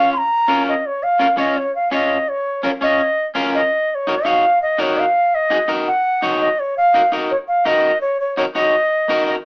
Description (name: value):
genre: latin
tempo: 167 BPM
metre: 4/4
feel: straight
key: unclear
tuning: A4 = 440 Hz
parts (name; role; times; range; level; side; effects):
- bright reedy bansuri; melody; 0.0-9.3 s; Db5 to C6; -16 LUFS; equal; none
- electric guitar at the edge of break-up; accompaniment; 0.0-9.3 s; Db4 to Db5; -19 LUFS; equal; none
room: moderate studio reverb, RT60 0.5 s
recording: band playing live in one room, small speaker sound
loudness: -15 LUFS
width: side -27 dB against mid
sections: 0.8-9.4 A section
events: none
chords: 0.0 Bbm; 3.7 Ebm